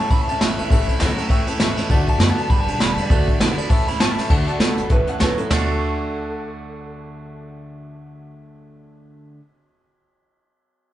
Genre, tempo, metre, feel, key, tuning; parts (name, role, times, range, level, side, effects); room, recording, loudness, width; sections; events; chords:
rockabilly; 200 BPM; 4/4; swing 59% on 8ths; D major; A4 = 440 Hz
electric guitar through a small old amp; melody; 0.0-9.4 s; A4 to B5; -26 LUFS; equal
clear upright piano; accompaniment; 0.0-9.4 s; C#5 to B5; -32 LUFS; equal
picked steel-string acoustic guitar; accompaniment; 0.0-9.5 s; A2 to B4; -29 LUFS; left 2 dB
twangy electric guitar; riff; 0.0-9.4 s; G2 to F#4; -29 LUFS; right 3 dB; spring reverb
upright bass; bass; 0.1-9.4 s; E1 to F#2; -26 LUFS; equal
vintage brush drum kit; drums; 0.1-5.6 s; crash cymbal, hi-hat, kick drum, ride cymbal, snare drum, toms; -18 LUFS; equal
light reverb; band playing live in one room, nothing above 10.5 kHz; -16 LUFS; side -13 dB against mid
0.0-4.3 A section; 4.3-5.5 B section; 5.5-7.9 C section
0.0 A; 1.9 D; 2.5 G; 3.1 D; 3.7 A; 4.3 D; 4.9 A; 5.5 D